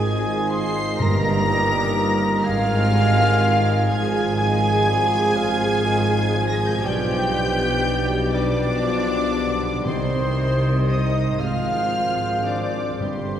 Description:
classical; 36-42 BPM (dotted quarters); 6/8; rubato; A4 = 442 Hz
rich studio violin section; melody; 0.0-13.4 s; C6 to C7; -30 LUFS; left 1 dB
mellow hollow silver concert flute; second line; 0.0-13.4 s; C5 to C6; -31 LUFS; equal
warm clarinet; second line; 0.0-13.4 s; G4 to D5; -32 LUFS; left 2 dB
warm oboe; second line; 0.0-13.4 s; C5 to Ab5; -34 LUFS; equal
warm studio violin section; second line; 0.0-13.4 s; C5 to C6; -32 LUFS; left 1 dB
warm bassoon; accompaniment; 0.0-13.4 s; D3 to Ab3; -32 LUFS; right 1 dB
warm studio viola section; accompaniment; 0.0-13.4 s; C4 to C5; -29 LUFS; equal
dark French horn section; sustained chords; 0.0-13.4 s; C4 to G4; -31 LUFS; left 3 dB
warm trombone section; sustained chords; 0.0-13.4 s; D3 to Bb3; -31 LUFS; right 2 dB
dark trumpet section; stabs; 0.0-13.4 s; C5 to C6; -26 LUFS; right 1 dB
dark studio double bass section; bass; 0.0-13.4 s; G1 to C2; -25 LUFS; right 1 dB
rich studio cello section; bass; 0.0-13.4 s; G2 to C3; -27 LUFS; right 1 dB
warm tuba; bass; 0.0-13.4 s; G1 to C2; -30 LUFS; equal
timpani; percussion; 1.0-2.4, 9.9-13.4 s; G2 to C3; -28 LUFS; equal
wet church reverb, RT60 2.4 s; heard from further back in the room; -18 LUFS; side -10 dB against mid
0.0-13.4 A section
0.0 Ab; 1.0 Eb7/G; 2.4 Abmaj7; 3.9 Fm/Ab; 6.8 G7/B; 9.8 Cm; 11.4 Fm/Ab
| 0.99 2.44 | 3.90 5.36 | 6.83 8.32 | 9.85 11.39 | 13.00

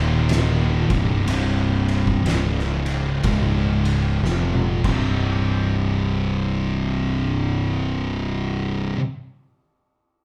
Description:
stoner and doom metal; 61 BPM; 4/4; swing 62% on 8ths; C phrygian; A4 = 439 Hz
thick fuzz guitar; riff; 0.0-9.0 s; C2 to F3; -27 LUFS; equal; distortion
thick fuzz guitar; riff; 0.0-9.0 s; C2 to F3; -26 LUFS; equal; distortion
fuzz fingered electric bass; bass; 0.0-8.9 s; C1 to F1; -27 LUFS; equal; overdrive, tube saturation
oversized low-tuned drum kit; drums; 0.3-5.0 s; crash cymbal, kick drum, ride cymbal, snare drum, toms; -28 LUFS; equal
moderate large studio reverb, RT60 0.8 s; band playing live in one room; -21 LUFS; mono
0.0-5.2 A section; 5.2-9.2 B section
drum fill 4.2-5.2
0.0 Eb5; 0.8 C5; 2.3 Db5; 4.2 F5; 4.7 C5
0.29 | 1.27 2.26 3.24 4.23 | 5.22 6.21 7.19 8.18

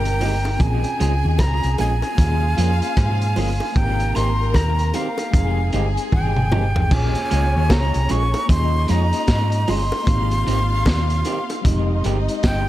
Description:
lovers rock reggae; 76 BPM; 4/4; swing 61% on 16ths; A4 = 441 Hz
breathy jazz flute; melody; 0.0-12.7 s; F5 to Db6; -25 LUFS; right 1 dB; tape echo
warm symphonic violin section; second line; 0.0-12.7 s; Db4 to Bb5; -30 LUFS; left 2 dB; tape echo
mellow tine electric piano; accompaniment; 0.0-12.7 s; G3 to Ab4; -29 LUFS; left 2 dB; medium stereo tremolo, tape echo
hollow-body short-scale fingered electric bass; bass; 0.0-12.7 s; F1 to Ab2; -20 LUFS; equal
crunchy breakbeat drum kit; drums; 0.1-12.7 s; crash cymbal, hi-hat, kick drum, rim click, snare drum, toms; -22 LUFS; equal
electric guitar through a small old amp; stabs; 0.2-12.2 s; Eb3 to Ab4; -29 LUFS; right 4 dB; tape echo
bongos; percussion; 0.2-11.6 s; -32 LUFS; equal
studio ambience; dark, warm production; -17 LUFS; side -14 dB against mid
0.0-6.9 A section; 6.9-12.7 A section
drum fill 6.1-6.9
0.0 Fm9 (rootless); 0.6 Bbm7; 2.2 Eb9sus4; 3.8 Abmaj9; 5.3 Fm9; 6.9 Bbm7; 8.5 Eb9sus4; 10.1 Abmaj9; 11.6 Fm9
| 0.60 1.39 2.18 2.97 | 3.76 4.55 5.34 6.13 | 6.92 7.71 8.49 9.28 | 10.07 10.86 11.65 12.44

